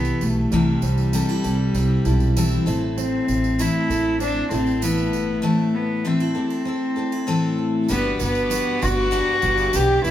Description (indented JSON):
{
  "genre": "acoustic pop",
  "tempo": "98 BPM",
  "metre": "4/4",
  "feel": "straight",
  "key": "unclear",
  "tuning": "A4 = 440 Hz",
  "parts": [
    { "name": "warm cello", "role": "melody", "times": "0.0-10.1 s", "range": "G3 to G4", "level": "-22 LUFS", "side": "left 1 dB", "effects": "none" },
    { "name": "picked steel-string acoustic guitar", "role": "accompaniment", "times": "0.0-10.1 s", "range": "A2 to B4", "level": "-23 LUFS", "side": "left 2 dB", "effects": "none" },
    { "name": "fingerpicked steel-string acoustic guitar", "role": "arpeggios", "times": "0.0-10.1 s", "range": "G3 to A4", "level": "-31 LUFS", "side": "right 9 dB", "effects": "none" },
    { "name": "upright bass", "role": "bass", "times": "0.0-10.1 s", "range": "G1 to C2", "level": "-24 LUFS", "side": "right 1 dB", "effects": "none" },
    { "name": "tambourine", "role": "percussion", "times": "0.0-10.1 s", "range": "none", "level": "-35 LUFS", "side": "right 7 dB", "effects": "none" },
    { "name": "clear studio string section", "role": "sustained chords", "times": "7.9-10.1 s", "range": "B4 to D6", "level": "-32 LUFS", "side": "equal", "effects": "none" }
  ],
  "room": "wet stone room reverb, RT60 1.2 s",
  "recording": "band playing live in one room",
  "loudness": "-18 LUFS",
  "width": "side -12 dB against mid",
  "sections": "0.0-7.9 A section; 7.9-10.1 B section",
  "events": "none",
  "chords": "0.0 C6; 2.7 Am; 7.9 Gmaj7"
}